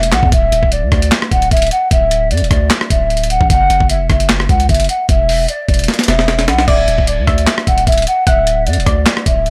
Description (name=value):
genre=hip hop, trap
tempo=151 BPM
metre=4/4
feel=half-time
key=D major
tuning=A4 = 440 Hz
part: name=mellow hollow concert flute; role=melody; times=0.0-9.5 s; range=D5 to F#5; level=-18 LUFS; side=equal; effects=low-pass filter, tape echo
part: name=long sustained 808-style bass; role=bass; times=0.0-9.5 s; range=D1 to F#2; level=-19 LUFS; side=equal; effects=none
part: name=breakbeat sampler-style drum kit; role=drums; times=0.0-9.5 s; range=crash cymbal, handclaps, hi-hat, kick drum, rim click, snare drum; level=-16 LUFS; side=equal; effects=none
part: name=soft round pluck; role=second line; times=6.7-9.5 s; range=D5 to F#5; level=-24 LUFS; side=equal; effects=chorus, tape echo
room=little or no reverb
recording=none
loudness=-13 LUFS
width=mono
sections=0.0-9.5 A section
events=drum fill 5.9-6.7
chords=0.3 Dsus2; 3.5 F#5; 5.1 E5; 6.7 Dadd9